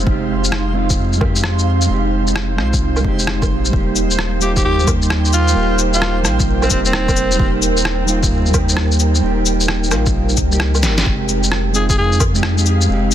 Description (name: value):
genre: future garage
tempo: 131 BPM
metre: 4/4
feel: swing 65% on 16ths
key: F minor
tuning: A4 = 440 Hz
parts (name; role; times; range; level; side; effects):
- mellow electric guitar; accompaniment; 0.0-13.1 s; G3 to G4; -22 LUFS; right 4 dB; vintage 12-bit sampler grit, sidechain pumping, low-pass filter, tape echo
- ethereal airy pad; sustained chords; 0.0-13.1 s; Ab3 to G5; -24 LUFS; right 2 dB; ensemble chorus, built-in reverb, sidechain pumping
- warm sub bass; bass; 0.0-13.1 s; Eb1 to F2; -18 LUFS; equal; sidechain pumping
- backwards swelling texture; texture; 0.0-11.1 s; C5; -29 LUFS; right 3 dB; built-in reverb
- electronic kick drum; drums; 0.1-12.3 s; none; -19 LUFS; equal; overdrive
- electronic shaker, rim click, woodblock, cabasa and snare drum; drums; 0.4-13.1 s; none; -20 LUFS; left 2 dB; soft clipping on snare
- raspy alto saxophone; melody; 4.4-7.5, 11.8-12.2 s; C4 to Ab4; -23 LUFS; equal; vintage 12-bit sampler grit, tape echo
room: digital ambience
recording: dense, heavily limited modern master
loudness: -13 LUFS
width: side -11 dB against mid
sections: 0.0-11.1 A section; 11.1-13.1 B section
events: kick drops out 10.6-11.1; drum fill 10.8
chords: 0.0 Fm7; 3.7 Eb; 11.1 Fm7